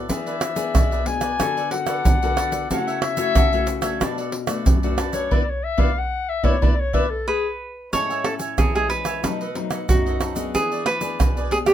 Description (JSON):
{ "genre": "samba and choro", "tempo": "92 BPM", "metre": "4/4", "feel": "straight", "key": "unclear", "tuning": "A4 = 442 Hz", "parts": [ { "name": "cavaquinho", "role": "accompaniment", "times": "0.0-11.7 s", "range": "D4 to G#5", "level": "-29 LUFS", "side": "right 3 dB", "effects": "none" }, { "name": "nylon-string guitar", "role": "accompaniment", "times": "0.0-11.7 s", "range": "F#2 to A4", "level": "-28 LUFS", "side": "left 6 dB", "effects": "none" }, { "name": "warm clarinet", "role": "second line", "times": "0.1-7.5 s", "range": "G#4 to G#5", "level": "-24 LUFS", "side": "left 6 dB", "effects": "none" }, { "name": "egg shaker, surdo, pandeiro and tamborim", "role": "percussion", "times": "0.1-11.7 s", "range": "none", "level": "-21 LUFS", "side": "right 1 dB", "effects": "none" }, { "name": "cavaquinho", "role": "melody", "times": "7.3-11.7 s", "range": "F#4 to C#5", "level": "-23 LUFS", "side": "right 2 dB", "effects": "none" } ], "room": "light reverb", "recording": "minimal, uncompressed stereo recording", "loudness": "-19 LUFS", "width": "side -10 dB against mid", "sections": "0.0-7.9 A section; 7.9-11.7 B section", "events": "clarinet solo 0.0-7.9; band accent 5.3-7.9", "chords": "0.1 E7; 1.4 Bm7/D; 2.7 F#m7/C#; 4.0 Bm7; 5.3 E5; 7.9 Amaj7; 9.2 B7; 10.5 E7" }